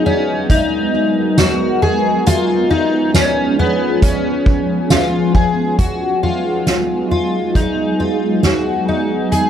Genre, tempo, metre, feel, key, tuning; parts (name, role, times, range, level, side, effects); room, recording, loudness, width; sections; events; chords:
dream pop; 68 BPM; 4/4; straight; G# dorian; A4 = 445 Hz
shimmering ambient pad; sustained chords; 0.0-9.5 s; E#3 to A#4; -18 LUFS; equal; chorus, built-in reverb, phaser
fingerpicked twelve-string acoustic guitar; arpeggios; 0.0-9.5 s; B3 to G#4; -16 LUFS; left 1 dB; analog chorus, digital delay
soft-mallet drum kit; drums; 0.5-9.5 s; hi-hat, kick drum, snare drum, tambourine; -16 LUFS; right 1 dB
light reverb; dark, warm production; -13 LUFS; side -9 dB against mid
0.0-5.8 A section; 5.8-9.5 B section
0.0 G#m7; 2.3 C#7; 5.8 G#m7